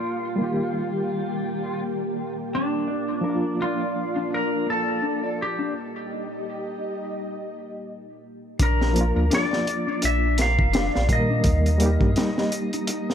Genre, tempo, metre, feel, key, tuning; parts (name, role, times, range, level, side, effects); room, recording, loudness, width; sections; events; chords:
trip hop; 84 BPM; 4/4; swing 58% on 16ths; A4 = 439 Hz
clean lap steel guitar; melody; 0.0-13.1 s; D4 to F5; -27 LUFS; equal; tape echo
overdriven reed electric piano; accompaniment; 0.0-13.1 s; Eb3 to Bb4; -27 LUFS; equal; tremolo, tape echo
string machine, cellos; sustained chords; 0.0-8.6 s; Bb3 to G5; -30 LUFS; equal; ensemble chorus
mellow electric guitar; arpeggios; 2.9-13.1 s; Bb3 to Eb5; -30 LUFS; left 6 dB; tape echo
warm sub bass; bass; 8.6-12.1 s; F1 to Bb2; -22 LUFS; equal
crunchy breakbeat drum kit; drums; 8.6-13.1 s; hi-hat, kick drum, snare drum; -24 LUFS; equal
small room ambience; -22 LUFS; side -8 dB against mid
0.0-8.6 A section; 8.6-13.1 B section
break 5.7-8.6
0.0 Eb; 2.9 Bb; 5.7 Eb; 8.6 Bb; 11.5 Eb